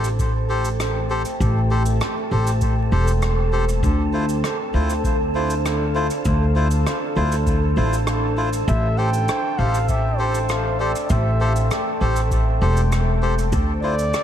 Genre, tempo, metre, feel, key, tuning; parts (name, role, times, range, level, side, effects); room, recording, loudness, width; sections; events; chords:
ambient dub; 99 BPM; 4/4; straight; D minor; A4 = 440 Hz
deep dark ambient pad; sustained chords; 0.0-14.2 s; A3 to G5; -27 LUFS; equal; chorus, built-in reverb
melodica; stabs; 0.0-14.0 s; E4 to C5; -27 LUFS; left 2 dB; dub echo
upright bass; bass; 0.0-14.1 s; E1 to D2; -20 LUFS; equal
cabasa and rim click; drums; 0.0-14.2 s; -31 LUFS; right 1 dB; dub echo
wind-like tuned noise texture; texture; 0.0-14.2 s; A4 to A5; -31 LUFS; right 1 dB; built-in reverb
electronic kick drum; drums; 0.2-13.6 s; -24 LUFS; equal
trumpet with bucket mute; melody; 8.7-14.2 s; C5 to G5; -26 LUFS; right 1 dB; dub echo
light reverb; vinyl crackle; -18 LUFS; side -10 dB against mid
0.0-14.2 A section
0.0 Am7; 3.8 Dm9; 8.7 Am7; 13.5 Dm9